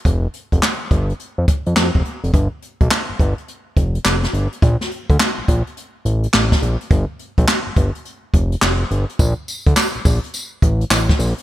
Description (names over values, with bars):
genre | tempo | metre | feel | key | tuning
R&B, new jack swing | 105 BPM | 4/4 | swing 65% on 16ths | unclear | A4 = 440 Hz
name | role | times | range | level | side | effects
fat analog bass | bass | 0.1-11.3 s | F1 to F2 | -18 LUFS | equal | none
jazz brush drum kit | drums | 0.1-11.4 s | handclaps, hi-hat, kick drum, snare drum, tambourine | -16 LUFS | equal | gated reverb
room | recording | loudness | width
little or no reverb | bright 1980s-style digital production | -16 LUFS | side -14 dB against mid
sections
0.0-2.3 A section; 2.3-11.4 B section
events
none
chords
none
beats
| 0.05 0.62 1.20 1.77 | 2.34 2.91 3.48 4.05 | 4.62 5.20 5.77 6.34 | 6.91 7.48 8.05 8.62 | 9.20 9.77 10.34 10.91